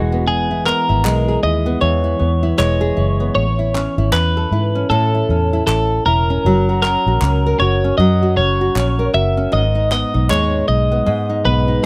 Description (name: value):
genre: acoustic pop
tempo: 78 BPM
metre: 4/4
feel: swing 60% on 16ths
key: unclear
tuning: A4 = 441 Hz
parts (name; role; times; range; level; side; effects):
- twelve-string electric guitar; melody; 0.0-11.9 s; F#4 to E5; -21 LUFS; equal; none
- nylon-string guitar; accompaniment; 0.0-11.9 s; G#2 to A#4; -22 LUFS; equal; none
- vintage muted fingered electric bass; bass; 0.0-11.8 s; E1 to A2; -20 LUFS; equal; none
- group handclap; percussion; 0.7-10.5 s; none; -29 LUFS; equal; none
room: little or no reverb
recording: close, detailed microphones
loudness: -16 LUFS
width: mono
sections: 0.0-11.9 A section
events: none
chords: 0.0 E; 3.4 A; 6.4 F#; 9.5 G#madd9